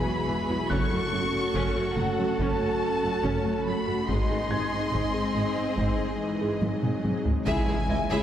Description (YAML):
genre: cinematic, hybrid orchestral and electronic film score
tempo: 71 BPM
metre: 4/4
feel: straight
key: unclear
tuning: A4 = 440 Hz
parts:
  - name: warm symphonic violin section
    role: melody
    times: 0.0-8.2 s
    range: F#5 to C#6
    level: -33 LUFS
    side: left 2 dB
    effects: none
  - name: rich symphonic violin section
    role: second line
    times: 0.0-8.2 s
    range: E4 to E5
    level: -36 LUFS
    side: left 2 dB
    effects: none
  - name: warm studio viola section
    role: accompaniment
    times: 0.0-8.2 s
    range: B#2 to F#4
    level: -34 LUFS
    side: right 1 dB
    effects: none
  - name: airy breathy pad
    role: sustained chords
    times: 0.0-8.2 s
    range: F#3 to F#5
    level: -34 LUFS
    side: left 1 dB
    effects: chorus
  - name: dark French horn section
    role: sustained chords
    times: 0.0-7.1 s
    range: F#3 to A4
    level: -33 LUFS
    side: right 2 dB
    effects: none
  - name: felt-muted upright piano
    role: texture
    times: 0.0-8.2 s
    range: E5 to G#6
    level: -40 LUFS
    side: left 2 dB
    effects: tape echo
  - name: harp-like synth pluck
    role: arpeggios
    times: 0.1-8.2 s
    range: C#3 to G#4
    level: -34 LUFS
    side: left 2 dB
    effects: chorus, tape echo
  - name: rich symphonic cello section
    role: bass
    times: 0.1-8.2 s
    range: C#2 to G#2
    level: -34 LUFS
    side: right 2 dB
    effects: none
  - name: rich symphonic double bass section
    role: bass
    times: 0.3-8.0 s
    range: E1 to C#2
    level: -34 LUFS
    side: right 2 dB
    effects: none
  - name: taiko ensemble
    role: drums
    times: 0.7-8.2 s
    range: none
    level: -32 LUFS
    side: equal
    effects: none
  - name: impact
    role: sound effects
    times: 7.5-8.2 s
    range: none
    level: -31 LUFS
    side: equal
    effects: none
room: wet scoring stage reverb, RT60 1.9 s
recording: heard from further back in the room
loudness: -24 LUFS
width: side -10 dB against mid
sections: 0.0-7.5 A section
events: drum fill 6.6-7.5; impact 7.5-8.2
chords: 0.0 Eadd9; 0.7 F#m; 4.1 G#; 7.5 C#m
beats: | 0.71 1.55 2.40 3.24 | 4.09 4.93 5.78 6.62 | 7.47